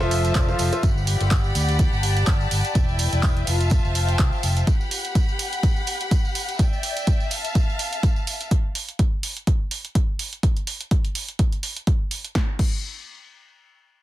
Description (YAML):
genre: piano house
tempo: 125 BPM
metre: 4/4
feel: swing 56% on 16ths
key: G major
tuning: A4 = 440 Hz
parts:
  - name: warm chamber violin section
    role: sustained chords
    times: 0.0-8.5 s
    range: F4 to B5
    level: -29 LUFS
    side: left 2 dB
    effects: sidechain pumping
  - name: clear concert grand piano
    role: riff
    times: 0.0-0.8 s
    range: F3 to F5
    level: -26 LUFS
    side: equal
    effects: sidechain pumping, ping-pong delay
  - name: fingered electric bass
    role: bass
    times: 0.0-4.6 s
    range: E1 to D2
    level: -22 LUFS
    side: equal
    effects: sidechain pumping, low-pass filter
  - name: tambourine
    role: percussion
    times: 0.0-8.5 s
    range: none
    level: -36 LUFS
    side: right 4 dB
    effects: none
  - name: clear studio string section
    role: texture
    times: 0.0-4.7 s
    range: E4 to A5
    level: -31 LUFS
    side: left 2 dB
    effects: sidechain pumping
  - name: punchy analog drum machine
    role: drums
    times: 0.1-12.7 s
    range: crash cymbal, handclaps, hi-hat, snare drum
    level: -29 LUFS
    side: right 2 dB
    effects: none
  - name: electronic kick drum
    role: drums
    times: 0.4-12.7 s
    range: none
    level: -20 LUFS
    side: equal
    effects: none
room: small room ambience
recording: dense, heavily limited modern master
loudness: -20 LUFS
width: side -15 dB against mid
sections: 0.0-12.4 A section; 12.4-14.0 B section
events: filter sweep on fingered electric bass 0.0-4.7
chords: 0.0 Fmaj7; 0.8 Gmaj7; 2.8 Em7; 3.5 Fmaj7; 4.7 Gmaj7; 6.6 Em7; 7.3 Fmaj7; 8.5 N.C.